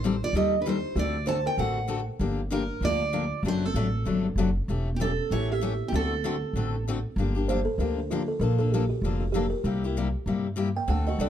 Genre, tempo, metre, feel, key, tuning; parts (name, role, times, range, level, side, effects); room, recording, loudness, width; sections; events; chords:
acoustic string swing (jazz manouche); 193 BPM; 4/4; swing 58% on 8ths; G minor; A4 = 440 Hz
picked steel-string acoustic guitar; melody; 0.0-6.8 s; G4 to A5; -30 LUFS; right 3 dB
buzzing kalimba; second line; 0.0-11.3 s; B3 to G5; -33 LUFS; right 3 dB
picked steel-string acoustic guitar; accompaniment; 0.0-11.3 s; C3 to A4; -29 LUFS; left 6 dB
upright bass; bass; 0.0-11.3 s; E1 to G2; -28 LUFS; equal
light reverb; dark, warm production; -24 LUFS; side -10 dB against mid
0.0-7.2 A section; 7.2-11.3 B section
kalimba solo 7.2-11.3
0.0 Am7b5; 1.0 D7; 2.2 Gm7; 3.4 D7/F#; 4.7 A7/E; 5.9 D7; 7.2 Gm7; 8.4 Bbmaj7; 9.6 C7